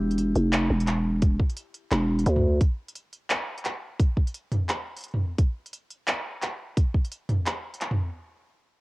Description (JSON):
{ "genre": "half-time drum and bass", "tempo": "173 BPM", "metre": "4/4", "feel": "swing 59% on 16ths, half-time", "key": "E phrygian", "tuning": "A4 = 440 Hz", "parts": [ { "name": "growling 808-style bass", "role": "bass", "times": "0.0-2.6 s", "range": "E1 to D2", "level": "-22 LUFS", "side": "equal", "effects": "none" }, { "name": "drum and bass drum kit", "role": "drums", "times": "0.1-8.0 s", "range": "handclaps, hi-hat, toms", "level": "-28 LUFS", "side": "equal", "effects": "cassette tape" }, { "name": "electronic kick drum", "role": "drums", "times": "1.2-7.0 s", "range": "none", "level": "-21 LUFS", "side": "equal", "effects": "cassette tape" } ], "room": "little or no reverb", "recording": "home recording on cassette", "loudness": "-24 LUFS", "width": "side -22 dB against mid", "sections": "0.0-8.2 A section", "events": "none", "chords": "none" }